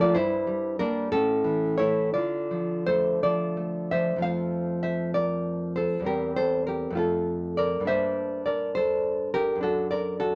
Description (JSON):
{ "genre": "romantic piece for solo classical guitar", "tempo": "55-71 BPM (dotted quarters)", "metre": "6/8", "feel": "rubato", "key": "D minor, F major from 4.2 s", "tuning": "A4 = 436 Hz", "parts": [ { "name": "nylon-string guitar", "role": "solo", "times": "0.0-10.3 s", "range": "E2 to F5", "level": "-26 LUFS", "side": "equal", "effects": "none" } ], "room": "moderate small room reverb, RT60 0.5 s", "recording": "none", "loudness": "-27 LUFS", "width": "mono", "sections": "0.0-4.2 A section; 4.2-10.3 B section", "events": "none", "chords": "0.1 Gm; 1.1 A; 2.1 Dm; 4.2 F; 6.1 C/E; 7.0 F; 7.9 Gm; 9.6 D/F#" }